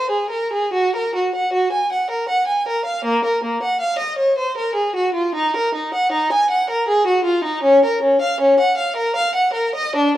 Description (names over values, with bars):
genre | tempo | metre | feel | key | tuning
classical, baroque-style suite movement for unaccompanied violin | 79 BPM | 3/4 | rubato | Bb minor | A4 = 439 Hz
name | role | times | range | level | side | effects
clear violin | solo | 0.0-10.2 s | Bb3 to Ab5 | -16 LUFS | equal | none
room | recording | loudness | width
moderate recital hall reverb, RT60 1.3 s | dark, warm production | -16 LUFS | side -13 dB against mid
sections
0.0-10.2 A section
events
none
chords
none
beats
| 0.75 1.54 2.30 | 3.05 3.81 4.55 | 5.34 6.13 6.89 | 7.64 8.40 9.15 | 9.95